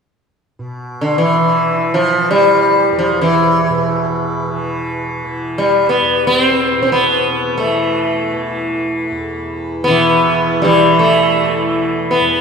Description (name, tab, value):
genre	indian classical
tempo	free time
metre	none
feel	none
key	E raga bhairavi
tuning	A4 = 440 Hz
part	tanpura	drone	0.6-12.4 s	E2 to E3	-21 LUFS	equal	none
part	sitar	melody	1.0-12.4 s	D3 to C4	-13 LUFS	equal	none
room	wet church reverb, RT60 2.9 s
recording	recorded in a church or concert hall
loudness	-12 LUFS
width	side -6 dB against mid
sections	0.6-12.4 A section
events	none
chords	none